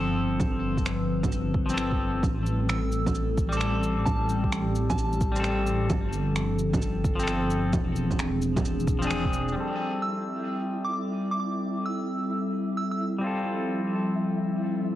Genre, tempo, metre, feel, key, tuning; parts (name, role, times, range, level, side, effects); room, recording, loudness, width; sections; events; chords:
future garage; 131 BPM; 4/4; swing 65% on 16ths; A minor; A4 = 440 Hz
clean electric guitar; accompaniment; 0.0-15.0 s; F3 to A4; -32 LUFS; left 2 dB; vintage 12-bit sampler grit, sidechain pumping, low-pass filter, tape echo
warbly tape-like pad; sustained chords; 0.0-15.0 s; F3 to B4; -29 LUFS; left 1 dB; chorus, built-in reverb, vintage 12-bit sampler grit, sidechain pumping
dark detuned saw bass; bass; 0.0-9.5 s; E1 to A1; -29 LUFS; equal; tube saturation, sidechain pumping
electronic bongos, shaker, finger snaps and cabasa; drums; 0.4-9.5 s; -32 LUFS; right 2 dB; overdrive
electronic kick drum; drums; 0.4-9.3 s; -28 LUFS; equal; overdrive
soft synth bell; melody; 2.7-5.4, 10.0-13.0 s; A5 to E6; -34 LUFS; right 2 dB; chorus, tape echo
flickering grainy texture; texture; 9.9-15.0 s; E4 to E5; -38 LUFS; right 1 dB; built-in reverb
light reverb; heavily compressed radio sound, cassette tape; -24 LUFS; side -13 dB against mid
0.0-9.6 A section; 9.6-15.0 B section
band accent 9.1
0.0 G9sus4; 2.2 Am7; 5.9 G9sus4; 7.7 E7b9b13; 9.6 Am7; 13.2 G9sus4